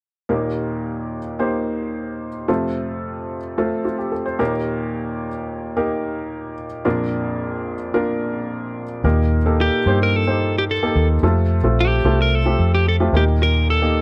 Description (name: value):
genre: pop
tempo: 110 BPM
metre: 4/4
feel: straight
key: unclear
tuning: A4 = 441 Hz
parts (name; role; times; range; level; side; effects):
- warm upright piano; accompaniment; 0.3-14.0 s; Bb1 to C5; -24 LUFS; equal; none
- vintage muted fingered electric bass; bass; 9.0-14.0 s; Bb1 to G2; -20 LUFS; equal; none
- lightly driven lead guitar; melody; 9.6-14.0 s; G4 to Bb4; -23 LUFS; equal; slapback echo
room: light reverb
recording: dry, close 1970s-style studio recording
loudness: -20 LUFS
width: mono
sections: 0.3-9.0 A section; 9.0-14.0 B section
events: none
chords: 0.3 Eb; 2.5 F; 4.4 Eb; 6.9 Bb; 9.0 Eb; 11.2 F; 13.1 Eb